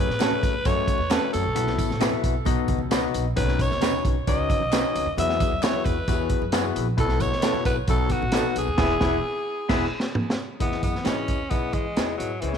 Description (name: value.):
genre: uptempo 1960s-style soul.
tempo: 133 BPM.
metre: 4/4.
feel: straight.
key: E major.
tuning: A4 = 440 Hz.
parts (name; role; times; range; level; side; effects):
raspy alto saxophone; melody; 0.0-12.6 s; E3 to E5; -28 LUFS; equal; tape echo.
overdriven tine electric piano; accompaniment; 0.0-12.6 s; B2 to E5; -28 LUFS; left 12 dB; none.
upright bass; bass; 0.0-12.6 s; E1 to E3; -29 LUFS; right 1 dB; none.
crunchy breakbeat drum kit; drums; 0.1-12.6 s; crash cymbal, hi-hat, kick drum, snare drum, toms; -26 LUFS; right 1 dB; none.
electric guitar through a small old amp; stabs; 0.2-12.1 s; B3 to B4; -32 LUFS; right 12 dB; tape echo.
congas; percussion; 0.2-8.7 s; none; -39 LUFS; right 13 dB; none.
handclaps and tambourine; percussion; 0.2-12.3 s; none; -40 LUFS; left 2 dB; none.
room: light reverb, small room ambience.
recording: 1960s-style stereo with parts hard left and right.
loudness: -21 LUFS.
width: side -7 dB against mid.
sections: 0.0-10.6 A section; 10.6-12.6 B section.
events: band accent 8.8-10.6; drum fill 9.7-10.6.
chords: 0.0 F#m; 1.6 Bsus4; 2.5 B; 3.4 Badd9; 5.2 Eadd9; 7.0 B7sus4; 7.9 B7; 8.8 E; 10.6 Emaj7.